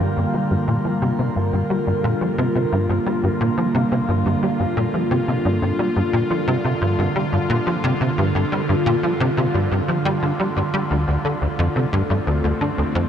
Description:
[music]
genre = ambient, sequencer-driven space music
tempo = 88 BPM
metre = 4/4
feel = straight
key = G minor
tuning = A4 = 440 Hz
[part]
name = phased analog pad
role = sustained chords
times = 0.0-13.1 s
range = D3 to Bb4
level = -21 LUFS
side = equal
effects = phaser, chorus, shimmer reverb
[part]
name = tight sequencer bass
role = riff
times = 0.0-13.1 s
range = D2 to G3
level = -20 LUFS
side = equal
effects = ensemble chorus, tape echo, shimmer reverb
[sound]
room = wet huge ambient reverb, RT60 8.3 s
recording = none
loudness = -18 LUFS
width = side -8 dB against mid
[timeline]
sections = 0.0-13.1 A section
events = none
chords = 0.0 Gm7; 10.9 Dm7

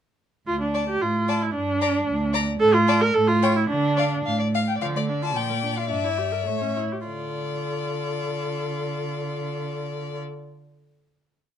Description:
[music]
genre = quick classical-period movement for string quartet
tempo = 98-114 BPM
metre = 2/4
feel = straight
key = D minor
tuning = A4 = 435 Hz
[part]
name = clear viola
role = accompaniment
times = 0.5-10.2 s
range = F3 to Bb4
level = -25 LUFS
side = right 2 dB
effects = none
[part]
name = rich cello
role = bass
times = 0.5-10.2 s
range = D2 to D3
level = -27 LUFS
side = right 2 dB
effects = none
[part]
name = clear violin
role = melody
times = 0.7-10.2 s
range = D5 to Bb5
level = -30 LUFS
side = left 10 dB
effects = none
[part]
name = rich violin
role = second line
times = 0.7-10.2 s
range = A4 to G5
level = -30 LUFS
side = left 5 dB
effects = none
[sound]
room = light reverb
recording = dark, warm production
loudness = -22 LUFS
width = side -9 dB against mid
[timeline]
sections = 0.5-4.8 A section; 4.8-7.1 coda; 7.1-9.4 final chord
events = slowing down 4.3-7.1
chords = 0.5 D5; 1.6 Gm; 2.6 Dm/A; 3.2 A7; 3.7 Dm; 5.4 Bb; 5.9 Em7b5/G; 6.5 A7; 7.1 Dm

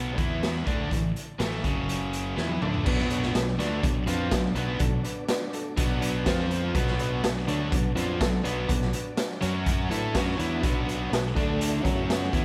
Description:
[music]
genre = classic rock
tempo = 124 BPM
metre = 4/4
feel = straight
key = B minor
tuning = A4 = 440 Hz
[part]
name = overdriven electric guitar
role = riff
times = 0.0-12.4 s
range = F#2 to A4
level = -35 LUFS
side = equal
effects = none
[part]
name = tight distorted guitar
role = riff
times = 0.0-12.4 s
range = F#2 to A4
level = -34 LUFS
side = equal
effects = distortion, slapback echo
[part]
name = growling fingered electric bass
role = bass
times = 0.0-12.4 s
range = F#1 to A2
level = -34 LUFS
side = equal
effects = overdrive
[part]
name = raw garage drum kit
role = drums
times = 0.2-12.4 s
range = crash cymbal, hi-hat, kick drum, snare drum, toms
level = -31 LUFS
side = equal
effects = none
[part]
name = overdriven reed electric piano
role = accompaniment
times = 2.9-12.4 s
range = C4 to B5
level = -38 LUFS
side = equal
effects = slapback echo
[part]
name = tonewheel organ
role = sustained chords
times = 2.9-12.4 s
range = C#3 to D5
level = -40 LUFS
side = equal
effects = none
[sound]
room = moderate lush hall reverb, RT60 1.8 s, small room ambience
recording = big arena sound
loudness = -27 LUFS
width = mono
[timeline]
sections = 0.0-2.9 A section; 2.9-10.6 B section; 10.6-12.4 C section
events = drum fill 2.4-2.9; reed electric piano fill 5.8-6.8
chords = 0.2 E5; 0.7 A5; 1.6 F#5; 2.4 A5; 2.9 Bm; 6.3 F5; 6.8 Bm; 9.4 F#5; 9.9 Bm; 11.4 D5; 11.8 F#5

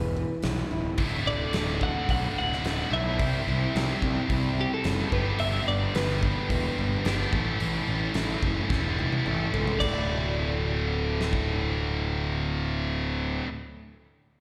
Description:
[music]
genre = quiet-loud alternative rock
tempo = 109 BPM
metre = 4/4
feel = straight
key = unclear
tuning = A4 = 438 Hz
[part]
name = twelve-string electric guitar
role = melody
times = 0.0-13.4 s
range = G4 to F#5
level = -35 LUFS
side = equal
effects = slapback echo, analog delay
[part]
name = picked steel-string acoustic guitar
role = arpeggios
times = 0.0-13.5 s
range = D2 to A4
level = -38 LUFS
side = equal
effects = none
[part]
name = fuzz picked electric bass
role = bass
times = 0.0-13.4 s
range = D1 to C#2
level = -32 LUFS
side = equal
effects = overdrive
[part]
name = huge arena drum kit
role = drums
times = 0.4-11.5 s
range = crash cymbal, hi-hat, kick drum, snare drum, toms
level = -34 LUFS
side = equal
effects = none
[part]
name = scooped high-gain guitar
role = riff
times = 1.0-13.5 s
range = D2 to C5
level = -32 LUFS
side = equal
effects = distortion, slapback echo
[sound]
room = studio reverb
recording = live gig heard through the venue's PA, recital hall reverb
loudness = -27 LUFS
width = mono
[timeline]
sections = 0.0-9.8 A section; 9.8-12.0 B section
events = drum fill 8.7-9.8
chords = 0.0 Em; 1.0 Dadd9; 3.2 C; 5.1 G; 7.3 Aadd9; 8.7 Em; 9.3 A; 9.8 Dsus2

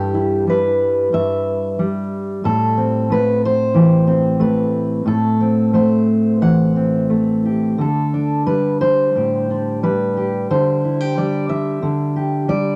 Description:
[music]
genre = folk, solo fingerstyle acoustic guitar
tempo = 91 BPM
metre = 4/4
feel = rubato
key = unclear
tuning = A4 = 440 Hz
[part]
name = fingerpicked steel-string acoustic guitar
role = solo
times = 0.0-12.8 s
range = G2 to F#5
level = -17 LUFS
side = equal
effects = none
[sound]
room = moderate studio ambience, RT60 0.5 s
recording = none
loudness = -17 LUFS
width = mono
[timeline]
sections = 0.0-12.8 A section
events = none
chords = 0.0 Em; 2.4 Am7; 7.8 Dsus4

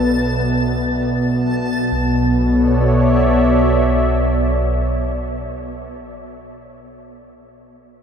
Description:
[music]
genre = ambient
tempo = 61 BPM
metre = 4/4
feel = straight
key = B minor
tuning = A4 = 439 Hz
[part]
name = warm velvety synth lead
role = melody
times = 0.0-0.9 s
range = B4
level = -32 LUFS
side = right 1 dB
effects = none
[part]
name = warm analog pad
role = sustained chords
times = 0.0-5.9 s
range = B2 to E5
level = -18 LUFS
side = equal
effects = chorus
[part]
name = deep rumbling drone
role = bass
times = 0.0-4.8 s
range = B1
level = -22 LUFS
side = equal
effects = built-in reverb
[part]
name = organ-like drone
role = drone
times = 0.0-5.2 s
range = F#3 to F#4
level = -24 LUFS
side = left 1 dB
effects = ensemble chorus, built-in reverb
[part]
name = backwards swelling texture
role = texture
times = 0.0-2.0 s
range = A5 to A6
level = -28 LUFS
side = left 2 dB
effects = built-in reverb
[sound]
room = wet huge ambient reverb, RT60 7.5 s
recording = dark, warm production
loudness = -14 LUFS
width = side -7 dB against mid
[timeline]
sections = 0.0-1.9 A section; 1.9-5.8 B section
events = none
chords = 0.0 E7sus2/B; 1.9 Bm11

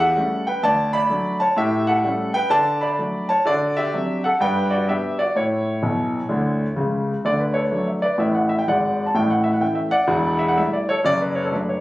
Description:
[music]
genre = jazz, stride piano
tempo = 127 BPM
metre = 4/4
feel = swing 63% on 8ths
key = D major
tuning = A4 = 440 Hz
[part]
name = warm grand piano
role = solo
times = 0.0-11.8 s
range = E1 to B5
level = -18 LUFS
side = equal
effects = none
[sound]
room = moderate studio reverb, RT60 0.9 s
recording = recorded on a phone in the room, studio ambience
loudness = -18 LUFS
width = side -17 dB against mid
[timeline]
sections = 0.0-7.2 A section; 7.2-11.8 B section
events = grand piano fill 5.8-7.2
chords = 0.0 A7/E; 0.6 D; 1.6 A7; 2.5 D; 3.5 D7; 4.4 G; 5.4 A; 7.2 D; 9.1 A; 10.1 A5/E; 11.1 D/F#

